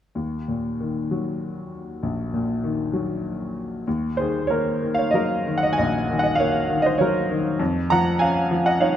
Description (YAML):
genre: classical, lyrical solo piano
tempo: 97 BPM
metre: 3/4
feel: uneven beats, rubato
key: Eb minor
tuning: A4 = 437 Hz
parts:
  - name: bright upright piano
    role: solo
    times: 0.2-9.0 s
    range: Bb1 to Bb5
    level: -20 LUFS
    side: equal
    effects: none
room: moderate recital hall reverb, RT60 1.2 s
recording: dark, warm production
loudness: -20 LUFS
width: side -10 dB against mid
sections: 0.2-3.9 A section; 3.9-9.0 B section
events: none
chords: 0.2 Ebm; 3.9 Ebm7; 7.6 Dbadd9/F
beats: | 0.16 0.80 1.43 | 2.04 2.64 3.24 | 3.87 4.50 5.14 | 5.78 6.39 7.00 | 7.60 8.20 8.81